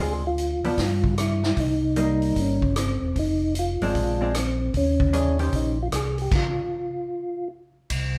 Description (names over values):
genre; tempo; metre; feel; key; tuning
soul jazz organ trio; 152 BPM; 4/4; swing 66% on 8ths; unclear; A4 = 440 Hz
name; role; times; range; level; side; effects
percussive tonewheel organ; melody; 0.0-7.5 s; C4 to Ab4; -28 LUFS; equal; slow rotary speaker, chorus vibrato
vintage hollow-body jazz guitar; accompaniment; 0.0-5.7 s; D3 to Db5; -30 LUFS; equal; none
mellow tonewheel organ; bass; 0.0-8.2 s; Fb1 to G2; -28 LUFS; equal; overdrive, chorus vibrato, slow rotary speaker
swinging big-band drum kit; drums; 0.4-8.0 s; crash cymbal, hi-hat, kick drum, ride cymbal, rim click, snare drum; -30 LUFS; equal; none
room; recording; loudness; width
moderate club reverb, RT60 0.8 s; heard from further back in the room; -24 LUFS; mono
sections
0.0-7.9 A section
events
stop 6.3-7.9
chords
0.0 Dm7b5; 0.8 Em/G; 1.6 Cm7; 3.2 Fm7; 3.9 Bb9; 4.7 Eb6; 6.3 N.C.